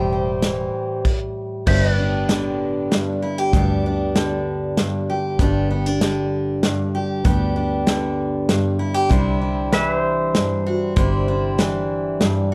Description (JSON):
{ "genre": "honky-tonk and classic country", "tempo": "97 BPM", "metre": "3/4", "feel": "straight", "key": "G major", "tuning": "A4 = 436 Hz", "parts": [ { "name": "picked steel-string acoustic guitar", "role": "accompaniment", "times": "0.0-12.5 s", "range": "G2 to G4", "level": "-23 LUFS", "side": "equal", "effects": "none" }, { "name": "fingered electric bass", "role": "bass", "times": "0.0-12.3 s", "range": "E1 to D2", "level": "-27 LUFS", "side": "equal", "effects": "none" }, { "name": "natural country drum kit", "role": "drums", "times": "0.4-12.4 s", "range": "crash cymbal, hi-hat, kick drum, snare drum", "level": "-23 LUFS", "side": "equal", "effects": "none" }, { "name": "pedal steel guitar", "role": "sustained chords", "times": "1.7-12.5 s", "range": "B4 to E5", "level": "-27 LUFS", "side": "equal", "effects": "none" } ], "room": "light reverb", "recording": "none", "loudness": "-20 LUFS", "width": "mono", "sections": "0.0-1.7 A section; 1.7-12.5 B section", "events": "none", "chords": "0.0 Am7; 1.7 G; 9.1 Cadd9", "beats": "0.43 1.05 | 1.68 2.30 2.92 | 3.54 4.16 4.78 | 5.40 6.02 6.64 | 7.26 7.88 8.49 | 9.11 9.73 10.35 | 10.97 11.59 12.21" }